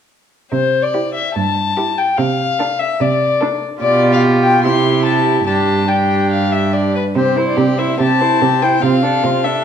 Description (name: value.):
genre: quick classical-period movement for string quartet.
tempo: 145 BPM.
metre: 4/4.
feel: straight.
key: C major.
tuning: A4 = 440 Hz.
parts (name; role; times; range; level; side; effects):
warm violin; melody; 0.5-9.6 s; B4 to C6; -16 LUFS; left 6 dB; none.
rich cello; bass; 0.5-9.6 s; G2 to C3; -18 LUFS; right 4 dB; none.
warm violin; second line; 0.9-9.6 s; F4 to C5; -21 LUFS; equal; none.
rich viola; accompaniment; 0.9-9.6 s; C4 to F4; -20 LUFS; right 4 dB; none.
room: wet recital hall reverb, RT60 1.7 s.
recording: dark, warm production.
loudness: -13 LUFS.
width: side -8 dB against mid.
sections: 0.5-9.6 A section.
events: none.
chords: 0.5 C; 2.2 Dm7/C; 3.8 G7/B; 4.6 C; 5.5 G5; 7.2 C; 8.8 Dm7/C.